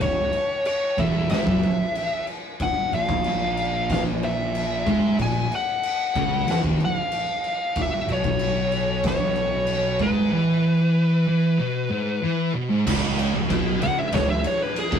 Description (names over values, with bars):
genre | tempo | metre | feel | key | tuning
stoner and doom metal | 93 BPM | 4/4 | straight | C# dorian | A4 = 442 Hz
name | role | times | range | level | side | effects
fuzz lead guitar | melody | 0.0-15.0 s | G#4 to G#5 | -25 LUFS | left 2 dB | distortion
thick fuzz guitar | riff | 0.0-15.0 s | C#2 to G#3 | -27 LUFS | left 4 dB | distortion
thick fuzz guitar | riff | 0.0-15.0 s | C#2 to G#3 | -25 LUFS | right 4 dB | distortion
fuzz fingered electric bass | bass | 0.0-15.0 s | C#1 to G#2 | -30 LUFS | equal | overdrive
oversized low-tuned drum kit | drums | 0.0-15.0 s | crash cymbal, kick drum, ride cymbal, snare drum | -27 LUFS | equal | none
heavy high-gain guitar | riff | 12.9-15.0 s | C#2 to B2 | -30 LUFS | equal | distortion
room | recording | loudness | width
moderate small room ambience, RT60 0.5 s | rough rehearsal-room recording | -20 LUFS | side -8 dB against mid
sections
0.0-12.9 A section; 12.9-15.0 B section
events
lead electric guitar solo 12.9-15.0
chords
0.0 C#m; 2.6 A#5; 7.8 E6/B; 12.9 C#5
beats
| 0.02 0.66 1.31 1.96 | 2.60 3.25 3.89 4.54 | 5.18 5.83 6.47 7.12 | 7.76 8.40 9.04 9.68 | 10.32 10.96 11.59 12.23 | 12.86 13.50 14.13 14.76